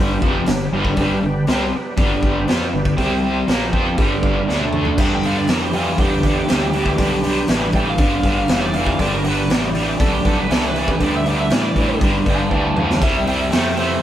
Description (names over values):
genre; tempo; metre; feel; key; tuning
blues rock power trio and southern rock; 120 BPM; 4/4; straight; G mixolydian; A4 = 439 Hz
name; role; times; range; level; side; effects
overdriven tonewheel organ; sustained chords; 0.0-14.0 s; G3 to A5; -28 LUFS; right 2 dB; chorus vibrato, slow rotary speaker
cranked stack guitar; riff; 0.0-14.0 s; F2 to F4; -19 LUFS; equal; overdrive, harmonic tremolo
growling fingered electric bass; bass; 0.0-14.0 s; F1 to A2; -25 LUFS; equal; overdrive
raw garage drum kit; drums; 0.2-13.9 s; crash cymbal, hi-hat, kick drum, snare drum, splash cymbal, toms; -20 LUFS; equal; none
biting lead guitar; second line; 5.0-14.0 s; F4 to Bb5; -24 LUFS; right 2 dB; overdrive
room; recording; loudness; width
moderate studio reverb, RT60 0.6 s; band playing live in one room; -15 LUFS; side -11 dB against mid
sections
0.0-5.0 A section; 5.0-14.0 B section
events
tonewheel organ fill 4.0-5.0; drum fill 4.5-5.0, 12.5-13.0; lead electric guitar solo 5.0-14.0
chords
0.0 G; 3.0 C5; 3.5 G; 4.5 D5; 5.0 G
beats
0.47 | 0.97 1.47 1.97 2.47 | 2.98 3.48 3.98 4.48 | 4.98 5.48 5.98 6.49 | 6.99 7.49 7.99 8.49 | 8.99 9.50 10.00 10.50 | 11.00 11.51 12.01 12.51 | 13.01 13.51 14.02